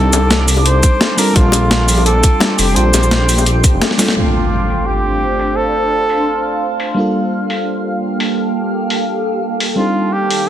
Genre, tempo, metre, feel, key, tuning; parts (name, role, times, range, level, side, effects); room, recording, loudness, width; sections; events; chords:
liquid drum and bass; 171 BPM; 4/4; swing 54% on 16ths; A4 = 441 Hz
warm flugelhorn; melody; 0.0-6.8, 9.8-10.5 s; F4 to C5; -18 LUFS; right 1 dB; digital delay
mellow FM electric piano; accompaniment; 0.0-10.5 s; G3 to A4; -20 LUFS; equal; chorus, low-pass filter, digital delay
shimmering ambient pad; sustained chords; 0.0-10.5 s; Eb3 to D6; -20 LUFS; right 1 dB; chorus, built-in reverb, phaser, sidechain pumping
dark detuned saw bass; bass; 0.0-3.8 s; F1 to C2; -14 LUFS; equal
breakbeat sampler-style drum kit; drums; 0.1-10.4 s; hi-hat, shaker, snare drum; -16 LUFS; equal; low-pass filter on hats, low-pass filter on perc, low-pass filter on snare, low-pass filter on room
bongos; percussion; 0.1-3.9 s; -22 LUFS; left 5 dB
electronic kick drum; drums; 0.8-3.7 s; -11 LUFS; equal
impact; sound effects; 4.2-5.6 s; -19 LUFS; equal
light reverb, digital ambience; dense, heavily limited modern master; -12 LUFS; side -11 dB against mid
0.0-4.2 A section; 4.2-10.5 B section
drop 0.0-4.2; drum fill 3.9; band accent 4.1; impact 4.2-5.6; filter sweep on drum 4.2-10.5; filter sweep on ambient pad 4.2-10.5
0.0 Cm69; 1.2 Bbmaj13; 4.2 Dm7; 7.0 Gm9; 9.8 Cm69